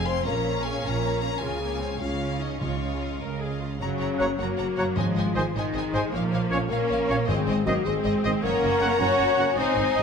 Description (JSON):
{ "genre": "cinematic, heroic adventure film score", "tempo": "104 BPM (dotted quarters)", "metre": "6/8", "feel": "straight", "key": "unclear", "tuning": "A4 = 440 Hz", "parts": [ { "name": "clear chamber violin section", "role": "melody", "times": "0.0-10.0 s", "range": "Db5 to C6", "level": "-34 LUFS", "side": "left 6 dB", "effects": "none" }, { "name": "rich symphonic violin section", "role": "second line", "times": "0.0-10.0 s", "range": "Eb4 to Ab5", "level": "-36 LUFS", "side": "left 2 dB", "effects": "none" }, { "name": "rich symphonic viola section", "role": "accompaniment", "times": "0.0-10.0 s", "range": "Gb3 to Bb4", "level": "-32 LUFS", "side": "right 1 dB", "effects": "none" }, { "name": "mellow French horn section", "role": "sustained chords", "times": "0.0-10.0 s", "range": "Db4 to Db5", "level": "-28 LUFS", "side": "left 5 dB", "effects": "none" }, { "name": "clear symphonic double bass section", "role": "bass", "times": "0.0-10.0 s", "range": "F1 to Db2", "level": "-31 LUFS", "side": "right 4 dB", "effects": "none" }, { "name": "rich symphonic cello section", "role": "bass", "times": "0.0-10.0 s", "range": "F2 to Db4", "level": "-30 LUFS", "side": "right 3 dB", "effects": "none" }, { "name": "timpani", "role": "percussion", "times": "2.6-7.8 s", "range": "Ab2 to Db3", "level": "-32 LUFS", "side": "left 3 dB", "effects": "none" }, { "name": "clear oboe", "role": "second line", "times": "4.2-10.0 s", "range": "Db5 to Gb5", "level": "-36 LUFS", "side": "right 2 dB", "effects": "none" }, { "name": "mellow hollow concert flute", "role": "second line", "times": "4.2-10.0 s", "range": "Eb5 to Bb5", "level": "-36 LUFS", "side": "left 2 dB", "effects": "none" }, { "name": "warm clarinet", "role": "second line", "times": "4.2-10.0 s", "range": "C5 to Db5", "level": "-37 LUFS", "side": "left 1 dB", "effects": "none" }, { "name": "mellow trombone section", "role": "sustained chords", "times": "4.2-10.0 s", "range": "Bb2 to Db4", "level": "-35 LUFS", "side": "right 4 dB", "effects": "none" }, { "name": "warm trumpet", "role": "stabs", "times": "4.2-10.0 s", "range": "C5 to Gb5", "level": "-33 LUFS", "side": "right 1 dB", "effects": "none" } ], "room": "moderate scoring stage reverb, RT60 1.6 s", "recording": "none", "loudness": "-23 LUFS", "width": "side -6 dB against mid", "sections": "0.0-3.8 A section; 3.8-10.0 B section", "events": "none", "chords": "0.3 Bbm; 1.4 Db; 2.6 Dbadd9; 3.8 Gb; 5.0 Ab; 6.1 Bbm; 7.3 Ab; 8.4 Gb", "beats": "| 0.26 0.84 | 1.42 2.01 | 2.61 3.21 | 3.80 4.39 | 4.97 5.55 | 6.13 6.71 | 7.29 7.86 | 8.44 9.01 | 9.58" }